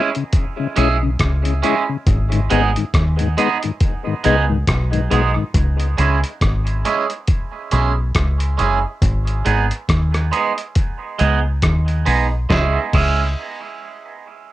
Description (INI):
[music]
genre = dub reggae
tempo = 69 BPM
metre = 4/4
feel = swing 58% on 16ths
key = C# minor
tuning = A4 = 440 Hz
[part]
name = twangy electric guitar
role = accompaniment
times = 0.0-13.2 s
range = G#3 to G#4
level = -21 LUFS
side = right 6 dB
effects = phaser, cassette tape, dub echo
[part]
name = dusty soul sampler-style drum kit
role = drums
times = 0.1-13.2 s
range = crash cymbal, hi-hat, kick drum, rim click, snare drum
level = -20 LUFS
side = equal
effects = overdrive, cassette tape
[part]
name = mellow tonewheel organ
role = accompaniment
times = 0.2-5.4 s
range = G#2 to E4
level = -23 LUFS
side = left 6 dB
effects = overdrive, chorus vibrato, slow rotary speaker, cassette tape, dub echo
[part]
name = deep dub fingered electric bass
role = bass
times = 0.8-13.3 s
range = F#1 to D#2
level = -17 LUFS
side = equal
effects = tube saturation
[sound]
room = light reverb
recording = home recording on cassette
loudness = -15 LUFS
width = side -15 dB against mid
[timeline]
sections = 0.0-12.5 A section; 12.5-14.5 B section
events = none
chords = 0.0 C#m; 2.1 G#m; 5.5 C#m; 9.0 G#m; 12.5 C#m